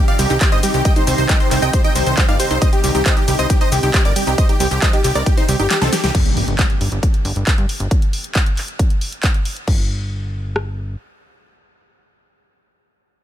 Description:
uplifting trance; 136 BPM; 4/4; straight; A4 = 440 Hz
dense compressed supersaw; melody; 0.0-6.1 s; C4 to G5; -21 LUFS; equal; sidechain pumping, digital delay
analog pluck; second line; 0.0-6.1 s; G4 to G5; -28 LUFS; left 3 dB
lush unison pad; sustained chords; 0.0-6.1 s; C3 to G4; -26 LUFS; equal; chorus, sidechain pumping
big-room dance drum kit; drums; 0.1-9.8 s; crash cymbal, handclaps, hi-hat, ride cymbal, shaker, snare drum; -22 LUFS; equal; studio reverb
tight sequenced synth; arpeggios; 0.2-6.0 s; G3 to G4; -26 LUFS; right 4 dB; chorus, sidechain pumping, digital delay
plucky analog bass; bass; 0.2-11.0 s; G1 to G2; -20 LUFS; equal; sidechain pumping
big-room dance drum kit; drums; 0.4-10.7 s; kick drum, rim click; -16 LUFS; equal; studio reverb
impact; sound effects; 6.1-7.9 s; -27 LUFS; equal
little or no reverb; -14 LUFS; side -11 dB against mid
0.0-6.1 A section; 6.1-9.7 B section; 9.7-13.2 C section
drop 0.0-6.1; kick drops out 5.7-6.1; drum fill 5.7-6.1; impact 6.1-7.9
0.0 Cm; 6.1 N.C.
0.41 | 0.85 1.29 1.74 2.18 | 2.62 3.06 3.50 3.94 | 4.38 4.82 5.26 5.71 | 6.15 6.59 7.03 7.47 | 7.91 8.35 8.79 9.23 | 9.68 10.12 10.56

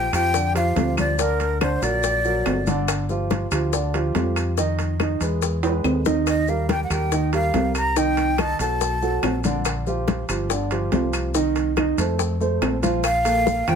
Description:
Afro-Cuban jazz; 142 BPM; 4/4; straight; Bb major; A4 = 436 Hz
breathy jazz flute; melody; 0.0-2.7, 6.3-9.4, 13.0-13.8 s; A#4 to Bb5; -23 LUFS; left 2 dB
warm upright piano; accompaniment; 0.0-13.8 s; D3 to F5; -24 LUFS; right 3 dB
fingered electric bass; bass; 0.0-13.8 s; G1 to F2; -25 LUFS; equal
claves; percussion; 0.1-13.8 s; -33 LUFS; left 7 dB
congas; percussion; 0.1-13.8 s; -29 LUFS; left 3 dB
maracas; percussion; 0.1-13.8 s; -34 LUFS; left 8 dB
timbales; percussion; 0.1-13.8 s; -28 LUFS; right 4 dB
bongos; percussion; 0.3-13.7 s; -29 LUFS; left 11 dB
light reverb; -19 LUFS; side -7 dB against mid
0.0-13.0 A section
drum fill 5.6-6.3
0.0 Bb6 (rootless); 1.2 Daug; 2.9 G5; 4.6 Fm7; 5.4 E; 6.3 Eb69; 8.0 Cm; 8.8 B5; 9.7 Bb6; 10.5 G5; 11.3 Cm; 12.2 F; 13.0 Bb5
0.34 0.76 | 1.19 1.61 2.04 2.46 | 2.88 3.31 3.73 4.15 | 4.58 5.00 5.42 5.85 | 6.27 6.69 7.12 7.54 | 7.96 8.38 8.81 9.23 | 9.65 10.08 10.50 10.92 | 11.35 11.77 12.19 12.62 | 13.04 13.47

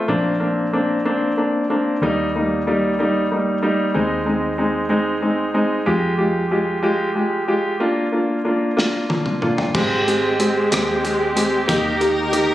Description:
six-eight pop ballad; 62 BPM (dotted quarters); 6/8; straight; A4 = 438 Hz
clear baby grand piano; accompaniment; 0.0-12.5 s; G3 to G4; -18 LUFS; equal
vintage muted fingered electric bass; bass; 0.0-12.5 s; Ab1 to F2; -28 LUFS; left 1 dB
modern studio drum kit; drums; 8.8-12.5 s; crash cymbal, hi-hat, kick drum, rim click, snare drum, toms; -23 LUFS; equal
warm studio string section; sustained chords; 9.7-12.5 s; Eb3 to Bb4; -21 LUFS; equal
moderate scoring stage reverb, RT60 1.7 s; recorded on a phone in the room, studio reverb, compression; -17 LUFS; side -14 dB against mid
0.0-9.7 A section; 9.7-12.5 B section
drum fill 8.8-9.7
0.1 Bbadd9; 2.0 Eb; 4.0 Ab/Eb; 5.9 Fmadd9; 7.8 Bb; 9.7 Abmaj7; 11.7 Eb
| 0.08 1.05 | 2.02 2.99 | 3.95 4.91 | 5.87 6.83 | 7.79 8.76 | 9.74 10.72 | 11.69

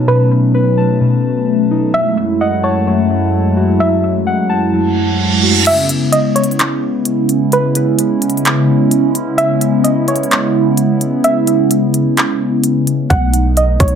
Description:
hip hop, atmospheric cloud-rap; 129 BPM; 4/4; half-time; C# minor; A4 = 440 Hz
hollow soft pad; sustained chords; 0.0-14.0 s; F#2 to E4; -13 LUFS; right 1 dB; chorus, phaser, sidechain pumping
muted felt-like synth keys; arpeggios; 0.0-5.7 s; B2 to A5; -17 LUFS; left 4 dB; chorus, low-pass filter, tape echo
soft round pluck; melody; 0.1-14.0 s; B4 to F#5; -17 LUFS; right 1 dB; chorus, low-pass filter, tape echo
reverse cymbal; sound effects; 4.9-5.7 s; -15 LUFS; right 7 dB
trap drum kit; drums; 5.7-13.9 s; crash cymbal, handclaps, hi-hat, kick drum; -17 LUFS; equal
warm 808-style bass; bass; 13.1-14.0 s; B1; -13 LUFS; right 1 dB
moderate digital room reverb, RT60 1.0 s, digital ambience; -11 LUFS; side -7 dB against mid
0.0-5.7 A section; 5.7-14.0 B section
reverse cymbal 4.9-5.7; kick muted 5.7-13.1
0.0 B7; 1.9 F#m7; 5.7 C#m7; 13.1 B7
| 0.08 0.55 1.01 1.48 | 1.94 2.40 2.87 3.33 | 3.80 4.27 4.73 5.20 | 5.66 6.13 6.59 7.06 | 7.52 7.99 8.45 8.92 | 9.38 9.85 10.31 10.78 | 11.24 11.71 12.17 12.64 | 13.10 13.57

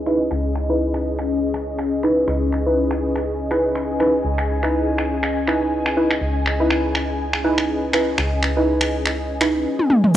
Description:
afro house; 122 BPM; 4/4; swing 56% on 16ths; C# minor; A4 = 441 Hz
ethereal airy pad; sustained chords; 0.0-10.2 s; C#4 to G#5; -24 LUFS; left 3 dB; ensemble chorus, built-in reverb, sidechain pumping, cassette tape
deep mellow chord stab; stabs; 0.0-9.7 s; D#4 to B4; -21 LUFS; right 1 dB; chorus, sidechain pumping, cassette tape, tape echo
woody FM bass; bass; 0.0-10.2 s; C#2; -26 LUFS; equal; sidechain pumping
deep house drum kit; drums; 0.1-10.1 s; finger snaps, toms; -22 LUFS; equal; overdrive, cassette tape
light reverb; home recording on cassette, low-pass filter; -18 LUFS; side -12 dB against mid
0.0-10.1 A section
filter sweep on ambient pad 0.0-10.1; filter sweep 0.0-10.1; drum fill 9.8-10.1
0.0 C#m9
| 0.31 0.81 1.30 1.79 | 2.28 2.77 3.26 3.76 | 4.25 4.74 5.23 5.72 | 6.21 6.71 7.20 7.69 | 8.18 8.67 9.17 9.66 | 10.15

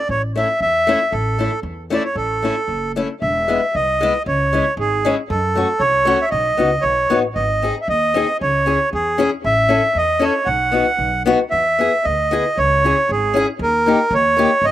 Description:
alpine folk, alpine dance band; 116 BPM; 2/4; swing 53% on 8ths, rubato; A major, E major from 3.2 s; A4 = 440 Hz
accordion; melody; 0.0-14.7 s; G#4 to F#5; -17 LUFS; right 1 dB; slapback echo
upright bass; bass; 0.1-14.7 s; E1 to F#2; -24 LUFS; equal
fingerpicked acoustic archtop guitar; accompaniment; 0.4-14.5 s; G#3 to A4; -20 LUFS; left 5 dB; slapback echo
little or no reverb; recorded outdoors, with no room sound; -15 LUFS; side -13 dB against mid
0.0-3.2 A section; 3.2-14.7 B section
0.0 A; 3.2 E; 4.3 C#m; 5.3 F#m; 6.3 Badd9; 7.3 G#; 8.4 C#m; 9.4 A; 10.5 B; 11.5 E; 12.6 C#m; 13.6 D#7
| 0.09 0.60 | 1.11 1.63 | 2.15 2.67 | 3.20 3.73 | 4.25 4.77 | 5.28 5.79 | 6.30 6.82 | 7.35 7.88 | 8.40 8.92 | 9.44 9.95 | 10.47 10.99 | 11.52 12.05 | 12.57 13.09 | 13.60 14.11 | 14.63

